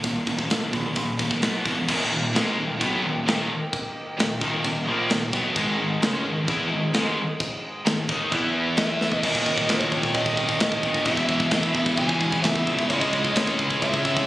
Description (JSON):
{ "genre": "heavy metal", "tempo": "131 BPM", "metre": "4/4", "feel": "straight", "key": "Eb phrygian dominant", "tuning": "A4 = 440 Hz", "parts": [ { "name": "heavy high-gain guitar", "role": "riff", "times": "0.0-14.3 s", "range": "Eb2 to Fb4", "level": "-30 LUFS", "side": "right 5 dB", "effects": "distortion" }, { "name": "scooped high-gain guitar", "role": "riff", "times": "0.0-14.3 s", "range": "Eb2 to Fb4", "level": "-26 LUFS", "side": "left 3 dB", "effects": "distortion" }, { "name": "overdriven picked electric bass", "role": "bass", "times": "0.0-14.2 s", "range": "Eb1 to Fb2", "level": "-31 LUFS", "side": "equal", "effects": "none" }, { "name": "tight metal drum kit", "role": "drums", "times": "0.0-14.3 s", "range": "crash cymbal, hi-hat, kick drum, snare drum, toms", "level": "-26 LUFS", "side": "equal", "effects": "none" }, { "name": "warm studio string section", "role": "sustained chords", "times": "1.9-14.3 s", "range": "Eb3 to E5", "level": "-35 LUFS", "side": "equal", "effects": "none" }, { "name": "high-gain distorted guitar", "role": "riff", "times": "1.9-14.3 s", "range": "Eb2 to Fb4", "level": "-30 LUFS", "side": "right 1 dB", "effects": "none" }, { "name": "bluesy overdriven lead guitar", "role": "melody", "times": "8.8-14.3 s", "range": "Db5 to G#5", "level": "-27 LUFS", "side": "equal", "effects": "distortion" } ], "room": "little or no reverb", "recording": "recorded on a phone in the room, studio reverb", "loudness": "-21 LUFS", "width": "side -16 dB against mid", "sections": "0.0-1.9 A section; 1.9-9.2 B section; 9.2-14.3 C section", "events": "drum fill 9.0", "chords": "0.0 Eb5; 1.4 B5; 1.7 E5; 1.9 Eb; 5.6 Ab5; 8.3 E5; 9.2 Eb; 11.1 E; 12.9 Dbm" }